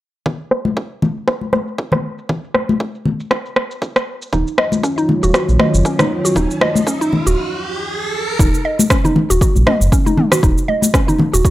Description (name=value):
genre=afro house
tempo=118 BPM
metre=4/4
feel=swing 56% on 16ths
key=Eb minor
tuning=A4 = 440 Hz
part: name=deep house drum kit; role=drums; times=0.3-11.5 s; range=rim click, shaker, toms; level=-18 LUFS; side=equal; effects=overdrive, low-pass filter on perc, studio reverb, low-pass filter on snare, low-pass filter on toms
part: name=electronic kick drum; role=drums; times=0.3-11.5 s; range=none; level=-16 LUFS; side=equal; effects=overdrive, high-pass filter on kick, studio reverb
part: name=congas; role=percussion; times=0.3-11.3 s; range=none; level=-18 LUFS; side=left 2 dB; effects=none
part: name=dark analog pad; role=sustained chords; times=4.3-8.4 s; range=Eb3 to Db5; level=-23 LUFS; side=right 1 dB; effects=chorus, sidechain pumping
part: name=mallet-like synth pluck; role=arpeggios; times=4.3-11.5 s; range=Db4 to Eb5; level=-19 LUFS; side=right 1 dB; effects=chorus, sidechain pumping, tape echo
part: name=round analog bass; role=bass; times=4.3-11.4 s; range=Eb1 to Bb1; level=-16 LUFS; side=equal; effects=sidechain pumping
part: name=riser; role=sound effects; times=5.5-8.4 s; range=none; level=-25 LUFS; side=right 1 dB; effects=none
room=digital ambience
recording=dry, gritty hardware recording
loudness=-14 LUFS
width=side -15 dB against mid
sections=0.3-8.4 A section; 8.4-11.5 B section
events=filter sweep on drum 0.3-8.4; riser 5.5-8.4; break 7.4-8.4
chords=0.3 Ebm9; 8.4 Ebm